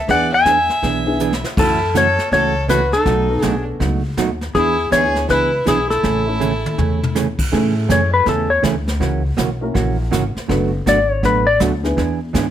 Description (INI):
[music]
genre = country, western swing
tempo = 162 BPM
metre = 4/4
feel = swing 63% on 8ths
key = A major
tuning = A4 = 438 Hz
[part]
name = clean lap steel guitar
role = melody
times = 0.0-8.6, 10.9-11.6 s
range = G#4 to G#5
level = -16 LUFS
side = left 3 dB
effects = none
[part]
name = clear fiddle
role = second line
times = 0.0-7.1 s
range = D#4 to E5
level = -25 LUFS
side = right 2 dB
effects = none
[part]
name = dark upright piano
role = accompaniment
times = 0.1-12.0 s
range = A3 to B4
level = -24 LUFS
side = left 1 dB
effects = none
[part]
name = hollow-body jazz guitar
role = accompaniment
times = 0.1-12.5 s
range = B2 to G#4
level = -22 LUFS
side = right 6 dB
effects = none
[part]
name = upright bass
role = bass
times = 0.1-12.5 s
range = F#1 to A2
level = -22 LUFS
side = left 1 dB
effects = none
[part]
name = jazz brush drum kit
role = drums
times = 0.1-12.5 s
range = brushed snare drum, crash cymbal, hi-hat, kick drum, snare drum, toms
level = -24 LUFS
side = equal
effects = none
[sound]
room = moderate studio reverb, RT60 0.8 s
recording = none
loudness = -15 LUFS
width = side -10 dB against mid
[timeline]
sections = 0.0-7.5 A section; 7.5-12.5 B section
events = drum fill 1.2-1.6, 6.4-7.1; electric slide guitar solo 7.5-12.5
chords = 0.1 E7; 1.6 F#m7; 3.1 B7; 4.5 E7; 6.0 Amaj7; 9.0 F#7; 10.5 Bm7/F#; 12.0 E7